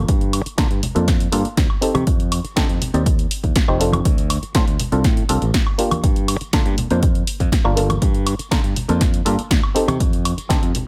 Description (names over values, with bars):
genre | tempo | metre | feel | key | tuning
filtered disco house | 121 BPM | 4/4 | straight | G minor | A4 = 440 Hz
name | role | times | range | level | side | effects
muted clav | accompaniment | 0.0-10.8 s | Bb3 to D5 | -25 LUFS | equal | phaser, sidechain pumping, low-pass filter
modern bright fingered electric bass | bass | 0.0-10.8 s | F1 to D3 | -24 LUFS | equal | sidechain pumping, low-pass filter
electronic kick drum | drums | 0.1-10.6 s | none | -21 LUFS | equal | none
punchy analog drum machine | drums | 0.1-10.8 s | hi-hat, snare drum, woodblock | -27 LUFS | equal | sidechain pumping on hats, sidechain pumping on perc, sidechain pumping on cymbals
tambourine and congas | percussion | 0.1-10.9 s | none | -29 LUFS | equal | sidechain pumping on perc, low-pass filter on perc
room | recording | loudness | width
digital ambience | none | -18 LUFS | mono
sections
0.0-10.9 A section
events
filter sweep 0.0-10.9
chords
0.0 Gm9; 2.1 F7; 4.1 Dm7; 6.0 Gm9; 10.0 F7